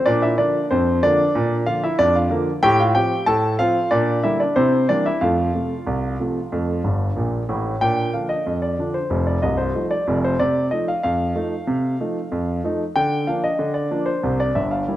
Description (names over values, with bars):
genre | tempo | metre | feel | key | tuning
ragtime piano | 93 BPM | 2/4 | straight | F major, Bb major from 7.8 s | A4 = 440 Hz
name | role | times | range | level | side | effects
warm grand piano | solo | 0.0-15.0 s | C1 to A5 | -18 LUFS | equal | none
room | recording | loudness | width
moderate lush hall reverb, RT60 2.3 s | rough home demo mix | -18 LUFS | side -14 dB against mid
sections
0.0-7.8 A section; 7.8-15.0 B section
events
grand piano fill 6.8-7.8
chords
0.1 Bb; 2.6 F/A; 3.9 Gm/Bb; 4.6 C7; 5.2 F; 7.8 Bb; 9.1 F7; 13.0 Bb/D; 14.2 C